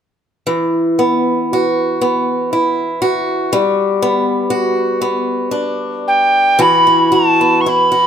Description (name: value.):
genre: celtic folk, Celtic slow air.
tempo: 54-61 BPM.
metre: 3/4.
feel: rubato.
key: E minor.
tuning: A4 = 442 Hz.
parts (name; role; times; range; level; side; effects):
picked swing-style acoustic guitar; accompaniment; 0.5-8.1 s; E3 to F#4; -14 LUFS; equal; none.
mid whistle; melody; 6.1-8.1 s; G5 to C#6; -10 LUFS; equal; none.
room: light reverb.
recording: close, detailed microphones.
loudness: -12 LUFS.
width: side -8 dB against mid.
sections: 0.5-6.6 A section; 6.6-8.1 B section.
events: none.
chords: 0.5 Esus2; 3.5 Gmaj7; 6.6 Esus2.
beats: | 0.48 1.53 2.54 | 3.53 4.51 5.52 | 6.60 7.67.